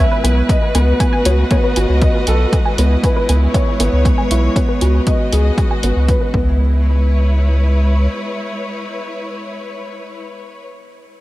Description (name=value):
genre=piano and strings electronica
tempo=118 BPM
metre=4/4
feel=straight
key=C# minor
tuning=A4 = 439 Hz
part: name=warm studio string section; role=sustained chords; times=0.0-10.7 s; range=G#3 to E5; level=-23 LUFS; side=left 1 dB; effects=sidechain pumping
part: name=analog pluck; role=arpeggios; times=0.0-6.8 s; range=B4 to G#5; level=-27 LUFS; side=left 1 dB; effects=chorus, sidechain pumping, digital delay
part: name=dark baby grand piano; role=riff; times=0.0-11.2 s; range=B3 to G#5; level=-20 LUFS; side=right 1 dB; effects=digital delay
part: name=warm sub bass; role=bass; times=0.0-8.1 s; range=G#1 to C#2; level=-14 LUFS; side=equal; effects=sidechain pumping
part: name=electronic hi-hat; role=drums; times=0.2-6.2 s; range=none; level=-24 LUFS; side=equal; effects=overdrive
part: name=electronic kick drum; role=drums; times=0.5-6.4 s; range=none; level=-16 LUFS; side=equal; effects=overdrive
room=little or no reverb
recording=none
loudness=-13 LUFS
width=side -17 dB against mid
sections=0.0-6.6 A section; 6.6-10.7 B section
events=filter sweep on sub bass 0.0-6.6; filter sweep on synth arpeggio sound 0.0-6.6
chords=0.5 B7/C#; 2.5 C#m7; 4.6 G#m7/C#; 6.3 C#m7